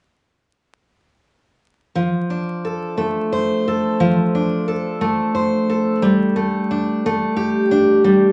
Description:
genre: pop.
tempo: 59 BPM (dotted quarters).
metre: 6/8.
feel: straight.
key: unclear.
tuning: A4 = 439 Hz.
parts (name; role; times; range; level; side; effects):
picked steel-string acoustic guitar; accompaniment; 2.0-8.3 s; F3 to C5; -18 LUFS; equal; none.
room: wet large studio reverb, RT60 0.9 s.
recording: vinyl crackle, nothing above 11.0 kHz.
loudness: -19 LUFS.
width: mono.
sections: 2.0-8.3 A section.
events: none.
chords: 2.0 F6; 6.0 Gsus2.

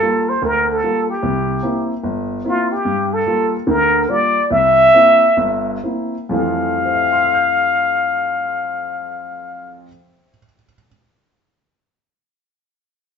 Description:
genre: jazz.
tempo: 126-149 BPM.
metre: 4/4.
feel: swing 64% on 8ths.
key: F major.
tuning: A4 = 442 Hz.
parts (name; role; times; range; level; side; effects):
trumpet with plunger mute; melody; 0.0-9.8 s; F4 to F5; -15 LUFS; left 1 dB; none.
warm grand piano; accompaniment; 0.0-10.9 s; G1 to G6; -21 LUFS; equal; none.
room: moderate studio reverb, RT60 0.7 s.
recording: band playing live in one room, nothing above 7.8 kHz.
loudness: -14 LUFS.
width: side -6 dB against mid.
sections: 0.0-6.3 A section; 6.3-10.1 B section.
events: slowing down 2.9-6.3.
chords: 0.0 Gm7; 1.2 C7; 2.9 Gm7; 4.5 C7; 6.3 Fmaj7.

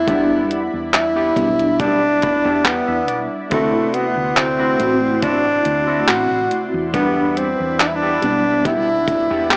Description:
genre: vaporwave.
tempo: 70 BPM.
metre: 4/4.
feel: straight.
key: E minor.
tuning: A4 = 440 Hz.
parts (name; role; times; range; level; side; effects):
breathy tenor saxophone; melody; 0.0-9.6 s; A3 to G4; -17 LUFS; equal; tape echo.
FM electric piano with soft pad layer; accompaniment; 0.0-9.6 s; C3 to F#5; -22 LUFS; equal; ensemble chorus, vintage 12-bit sampler grit, analog delay.
lush unison pad; sustained chords; 0.0-9.6 s; E4 to C6; -28 LUFS; equal; chorus, vintage 12-bit sampler grit.
hollow-body short-scale fingered electric bass; bass; 0.0-9.6 s; A1 to E2; -29 LUFS; equal; none.
semi-hollow electric guitar; riff; 0.1-9.6 s; B3 to B5; -25 LUFS; equal; analog chorus, analog delay.
detuned 8-bit digital drum machine; drums; 0.1-9.6 s; handclaps, hi-hat; -17 LUFS; equal; overdrive, vintage 12-bit sampler grit.
kick drum; drums; 0.1-9.3 s; none; -27 LUFS; equal; vintage 12-bit sampler grit.
room: light reverb, small room ambience.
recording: worn, warbling old tape, cassette tape, warbly pitch drift, small speaker sound.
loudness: -15 LUFS.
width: side -30 dB against mid.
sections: 0.0-9.6 A section.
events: clean electric guitar fill 1.8-3.5.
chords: 0.1 Em7; 3.5 D9; 6.9 Em7.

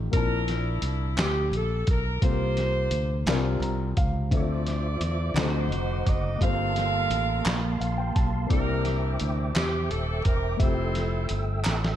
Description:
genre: slow gospel.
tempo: 57 BPM (dotted quarters).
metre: 6/8.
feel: straight.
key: unclear.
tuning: A4 = 438 Hz.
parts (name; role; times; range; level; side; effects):
dark baby grand piano; accompaniment; 0.0-12.0 s; G2 to Bb5; -32 LUFS; left 5 dB; none.
modern bright fingered electric bass; bass; 0.0-12.0 s; Eb1 to E2; -28 LUFS; equal; none.
warm saxophone section; melody; 0.1-11.6 s; D4 to F5; -30 LUFS; right 2 dB; none.
lo-fi sampler-style drum kit; drums; 0.1-12.0 s; hi-hat, kick drum, snare drum; -27 LUFS; equal; none.
group handclap; percussion; 1.2-12.0 s; none; -35 LUFS; right 2 dB; none.
mellow tonewheel organ; sustained chords; 4.3-12.0 s; Bb3 to E6; -34 LUFS; right 2 dB; fast rotary speaker, chorus vibrato.
room: light reverb.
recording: dark, warm production.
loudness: -23 LUFS.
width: side -11 dB against mid.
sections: 0.0-12.0 A section.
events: grand piano fill 3.3-4.3, 7.5-8.5; drum fill 11.6-12.0.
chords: 0.1 Bbmaj9#11; 2.2 C7sus4; 3.3 C9sus4; 4.3 Dm9; 5.4 D7b9; 6.4 Gm11; 8.5 C9; 10.6 Fmaj9.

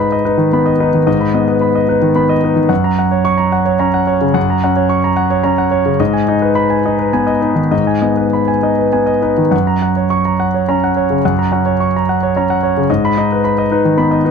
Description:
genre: neoclassical minimalist piano.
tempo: 99-112 BPM.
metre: 3/4.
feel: rubato.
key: unclear.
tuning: A4 = 439 Hz.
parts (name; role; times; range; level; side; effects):
warm concert grand piano; solo; 0.0-14.3 s; F#2 to C#6; -12 LUFS; equal; none.
room: little or no reverb.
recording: close, detailed microphones.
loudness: -12 LUFS.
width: side -6 dB against mid.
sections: 0.0-9.5 A section; 9.5-14.3 A section.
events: none.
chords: 0.0 G#m; 2.7 F#; 6.0 G#m; 9.5 F#; 12.9 G#m.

